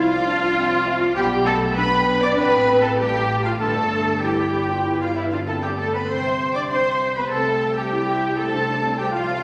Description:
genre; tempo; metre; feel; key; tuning
cinematic, playful, whimsical film cue; 98 BPM; 4/4; straight; C major; A4 = 440 Hz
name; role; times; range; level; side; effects
rich studio violin section; melody; 0.0-9.4 s; B4 to B5; -37 LUFS; equal; none
concert flute; second line; 0.0-9.4 s; E5 to D6; -32 LUFS; equal; none
dark clarinet; second line; 0.0-9.4 s; A3 to F4; -29 LUFS; equal; none
warm cor anglais; second line; 0.0-9.4 s; E4 to D5; -31 LUFS; equal; none
warm studio violin section; second line; 0.0-9.4 s; E5 to D6; -32 LUFS; equal; none
rich studio viola section; accompaniment; 0.0-9.4 s; E4 to D5; -27 LUFS; equal; none
dark French horn section; sustained chords; 0.0-9.4 s; E3 to D4; -32 LUFS; equal; none
concert harp; arpeggios; 0.0-9.4 s; G2 to D6; -37 LUFS; equal; none
rich studio cello section; bass; 0.0-9.4 s; E4 to D5; -26 LUFS; equal; none
rich studio double bass section; bass; 0.0-9.4 s; G1 to C2; -32 LUFS; equal; none
room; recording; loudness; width
wet recital hall reverb, RT60 1.5 s; none; -21 LUFS; mono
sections
0.0-9.4 A section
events
none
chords
0.0 Dm7/C; 1.2 G/B; 2.4 F/A; 3.6 G; 6.1 C; 8.5 Dm7/C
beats
0.56 | 1.17 1.77 2.37 2.97 | 3.59 4.22 4.84 5.47 | 6.09 6.71 7.32 7.93 | 8.54 9.14

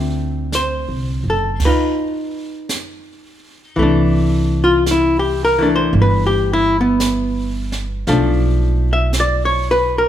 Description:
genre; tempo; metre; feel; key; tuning
jazz ballad; 56 BPM; 4/4; swing 69% on 8ths; C major; A4 = 440 Hz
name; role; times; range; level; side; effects
archtop guitar, miked and amplified; accompaniment; 0.0-10.1 s; D3 to E5; -16 LUFS; left 1 dB; none
upright bass; bass; 0.0-10.1 s; F#1 to D2; -19 LUFS; right 1 dB; none
jazz brush drum kit; drums; 0.5-10.1 s; brushed snare drum, crash cymbal, hi-hat, kick drum, snare drum; -25 LUFS; right 3 dB; none
room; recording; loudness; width
light reverb; none; -14 LUFS; side -11 dB against mid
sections
0.0-3.8 A section; 3.8-10.1 B section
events
none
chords
0.0 Dm7; 1.6 Ebsus2; 3.8 C69; 8.1 Bm7b5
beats
0.52 1.60 2.69 | 3.77 4.85 5.93 7.00 | 8.07 9.14

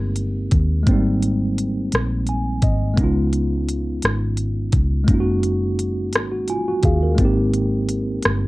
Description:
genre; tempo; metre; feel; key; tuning
slow six-eight R&B; 57 BPM (dotted quarters); 6/8; straight; Ab major; A4 = 439 Hz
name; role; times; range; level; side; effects
tine electric piano; accompaniment; 0.0-8.5 s; G3 to Ab5; -22 LUFS; right 1 dB; medium stereo tremolo
vintage muted fingered electric bass; bass; 0.0-8.5 s; Gb1 to Eb2; -22 LUFS; equal; none
pop drum kit; drums; 0.2-8.4 s; hi-hat, kick drum, rim click; -19 LUFS; equal; cassette tape
room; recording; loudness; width
light reverb; home recording on cassette; -17 LUFS; side -20 dB against mid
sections
0.0-8.5 A section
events
tine electric piano fill 1.9-3.0, 6.1-7.2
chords
0.0 Abmaj9; 3.0 Db9; 5.1 Gb69; 7.2 Abmaj9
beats
| 0.87 1.92 | 2.97 4.03 | 5.08 6.13 | 7.18 8.24

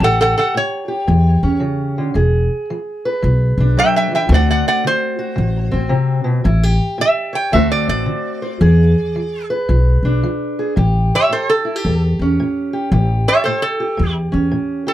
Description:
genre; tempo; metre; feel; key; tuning
acoustic country blues, solo or duo; 112 BPM; 4/4; swing 64% on 8ths; unclear; A4 = 444 Hz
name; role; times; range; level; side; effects
lap resonator guitar; melody; 0.0-14.9 s; A4 to G5; -16 LUFS; right 2 dB; none
fingerpicked steel-string acoustic guitar; accompaniment; 0.0-14.9 s; A2 to C#5; -20 LUFS; equal; none
upright bass; bass; 0.0-14.5 s; E1 to E2; -15 LUFS; equal; none
room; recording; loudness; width
moderate booth ambience, RT60 0.2 s; none; -14 LUFS; side -13 dB against mid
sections
0.0-10.8 A section; 10.8-14.9 B section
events
resonator guitar played with a steel bar solo 10.8-14.9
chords
0.0 A7; 2.2 E7; 4.3 D7; 6.5 A7; 7.5 D7; 8.6 E7; 10.8 A7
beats
| 0.02 0.55 1.09 1.62 | 2.16 2.69 3.23 3.77 | 4.30 4.84 5.38 5.92 | 6.46 6.99 7.53 8.07 | 8.61 9.15 9.69 10.23 | 10.77 11.31 11.85 12.38 | 12.92 13.46 14.00 14.53

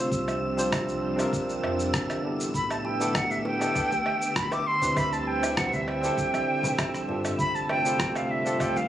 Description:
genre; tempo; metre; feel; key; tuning
sunset chillout; 99 BPM; 4/4; straight; unclear; A4 = 441 Hz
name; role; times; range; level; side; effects
barky tine electric piano; accompaniment; 0.0-8.8 s; B3 to C5; -29 LUFS; equal; auto-pan, tape echo
soft string machine; sustained chords; 0.0-8.9 s; C3 to E5; -34 LUFS; equal; ensemble chorus
warm sub bass; bass; 0.0-8.7 s; G1 to G2; -37 LUFS; equal; tube saturation
wind-like tuned noise texture; texture; 0.0-8.9 s; E6; -39 LUFS; right 2 dB; built-in reverb
electronic kick drum; drums; 0.1-8.7 s; none; -34 LUFS; equal; small room ambience
electronic shaker, woodblock and rim click; drums; 0.1-8.9 s; none; -32 LUFS; equal; small room ambience
bright concert flute; melody; 2.5-8.9 s; E5 to D6; -27 LUFS; right 1 dB; vintage 12-bit sampler grit, tape echo
bongos and congas; percussion; 2.8-8.9 s; none; -37 LUFS; right 1 dB; none
room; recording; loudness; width
light reverb, digital ambience; recorded on a phone in the room, club reverb, compression; -24 LUFS; side -11 dB against mid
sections
0.0-8.9 A section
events
none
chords
0.1 C9sus4; 2.5 A9sus4; 4.7 D9sus4; 7.4 G9sus4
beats
| 0.12 0.72 1.33 1.93 | 2.54 3.15 3.75 4.36 | 4.96 5.57 6.18 6.78 | 7.39 7.99 8.60

